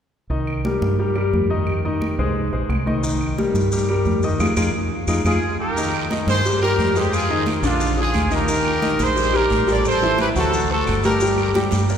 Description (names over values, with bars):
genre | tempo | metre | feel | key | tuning
latin, salsa | 176 BPM | 4/4 | straight | C minor | A4 = 440 Hz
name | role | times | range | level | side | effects
bright concert grand piano | accompaniment | 0.3-12.0 s | D3 to G5 | -22 LUFS | left 2 dB | none
deep dub fingered electric bass | bass | 0.3-12.0 s | G1 to G2 | -23 LUFS | right 1 dB | none
congas | percussion | 0.3-12.0 s | none | -28 LUFS | equal | none
claves | percussion | 0.5-11.6 s | none | -34 LUFS | right 2 dB | none
maracas | percussion | 3.0-12.0 s | none | -34 LUFS | left 2 dB | none
bright trumpet section | melody | 5.3-11.5 s | D4 to D5 | -21 LUFS | right 2 dB | none
guiro | percussion | 5.8-12.0 s | none | -33 LUFS | right 7 dB | none
room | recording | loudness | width
wet cathedral reverb, RT60 4.4 s | recorded in a church or concert hall | -17 LUFS | side -8 dB against mid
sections
0.3-5.8 A section; 5.8-12.0 B section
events
band accent 4.4-5.8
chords
0.3 Cm7; 1.7 Fm7; 3.0 Cm7; 4.4 Fm7; 5.8 Cm7; 7.1 Fm7; 7.8 Bb7; 8.5 Eb; 9.9 Am7; 10.5 D7; 11.2 Gm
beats
| 0.30 0.64 0.98 1.33 | 1.67 2.01 2.35 2.69 | 3.04 3.38 3.72 4.06 | 4.40 4.74 5.08 5.42 | 5.77 6.11 6.45 6.79 | 7.13 7.47 7.81 8.15 | 8.49 8.83 9.17 9.51 | 9.85 10.19 10.53 10.87 | 11.21 11.55 11.89